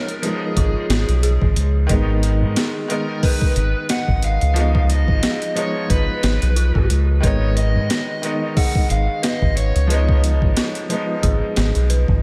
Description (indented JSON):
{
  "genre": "trip hop",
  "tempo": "90 BPM",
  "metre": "4/4",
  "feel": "swing 56% on 16ths",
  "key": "unclear",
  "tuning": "A4 = 440 Hz",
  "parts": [
    { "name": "overdriven slide guitar", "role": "melody", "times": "0.0-10.2 s", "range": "G#4 to F#5", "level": "-29 LUFS", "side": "equal", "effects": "tape echo" },
    { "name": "bright upright piano", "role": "accompaniment", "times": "0.0-12.2 s", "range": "D#3 to D#4", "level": "-27 LUFS", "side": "equal", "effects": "harmonic tremolo, vintage 12-bit sampler grit, tape echo" },
    { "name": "dark detuned synth bell", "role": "arpeggios", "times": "0.0-12.2 s", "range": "E#4 to D#5", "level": "-33 LUFS", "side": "equal", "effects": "chorus, tape echo" },
    { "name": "boom bap sampler-style drum kit", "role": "drums", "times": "0.1-12.2 s", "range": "hi-hat, kick drum, snare drum", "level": "-23 LUFS", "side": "equal", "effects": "overdrive" },
    { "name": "deep dub fingered electric bass", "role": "bass", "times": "0.6-12.2 s", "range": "G#1 to G#2", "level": "-20 LUFS", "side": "equal", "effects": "none" }
  ],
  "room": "light reverb",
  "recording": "none",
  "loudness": "-19 LUFS",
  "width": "mono",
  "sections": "0.0-12.2 A section",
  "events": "none",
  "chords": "0.0 C#7; 1.9 G#m; 4.6 C#7; 7.2 G#m; 9.9 C#7",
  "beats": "0.56 1.23 | 1.90 2.56 3.23 3.90 | 4.56 5.23 5.89 6.56 | 7.23 7.89 8.56 9.23 | 9.89 10.56 11.23 11.89"
}